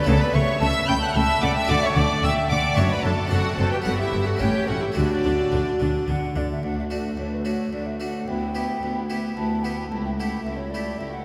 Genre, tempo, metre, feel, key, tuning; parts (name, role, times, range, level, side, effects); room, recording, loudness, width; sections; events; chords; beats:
classical, baroque-style concerto movement with solo episodes; 110 BPM; 3/4; straight; D major; A4 = 440 Hz
mellow hollow concert flute; melody; 0.0-11.2 s; F#4 to B5; -30 LUFS; equal
warm chamber violin section; melody; 0.0-11.2 s; F#4 to G6; -34 LUFS; equal
warm chamber violin section; second line; 0.0-11.2 s; D4 to G5; -31 LUFS; equal
harpsichord; accompaniment; 0.0-11.2 s; C#2 to A4; -32 LUFS; equal
warm chamber viola section; accompaniment; 0.1-11.2 s; A3 to D4; -35 LUFS; equal
dark chamber cello section; bass; 0.1-11.2 s; C#2 to D3; -30 LUFS; equal
rich chamber double bass section; bass; 0.1-6.4 s; F#1 to D2; -29 LUFS; equal
wet cathedral reverb, RT60 4.5 s; -23 LUFS; mono
0.0-6.6 A section; 6.6-11.2 B section
0.1 A/C#; 1.7 D; 2.8 D/F#; 3.3 D7/F#; 3.9 G; 4.4 A7; 5.0 D; 8.3 Em7/D; 9.9 A7/C#
| 0.07 0.61 1.15 | 1.69 2.23 2.77 | 3.32 3.86 4.41 | 4.97 5.53 6.08 | 6.63 7.18 7.73 | 8.27 8.82 9.36 | 9.90 10.45 10.99